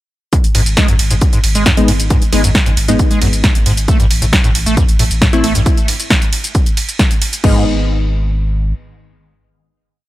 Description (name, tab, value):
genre	driving peak-time techno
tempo	135 BPM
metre	4/4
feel	straight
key	G# phrygian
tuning	A4 = 440 Hz
part	overdriven acid bass	riff	0.3-7.6 s	F#2 to A3	-19 LUFS	right 1 dB	lush chorus, cassette tape, sidechain pumping, digital delay
part	electronic kick drum	drums	0.3-7.5 s	none	-13 LUFS	equal	none
part	techno drum kit	drums	0.3-7.5 s	crash cymbal, hi-hat, ride cymbal, shaker, snare drum	-17 LUFS	right 1 dB	sidechain pumping on hats, sidechain pumping on perc, sidechain pumping on cymbals
part	saturated sub bass	bass	0.4-8.7 s	G#1 to A1	-17 LUFS	equal	tube saturation, sidechain pumping, low-pass filter
part	wavetable chord stab	stabs	1.8-10.1 s	G#3 to E4	-18 LUFS	left 2 dB	sidechain pumping, digital delay
room	digital ambience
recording	none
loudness	-11 LUFS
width	side -16 dB against mid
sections	0.3-7.4 drop; 7.4-10.1 final chord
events	drop 0.3-7.4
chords	0.3 G#m; 3.9 N.C.; 7.4 G#m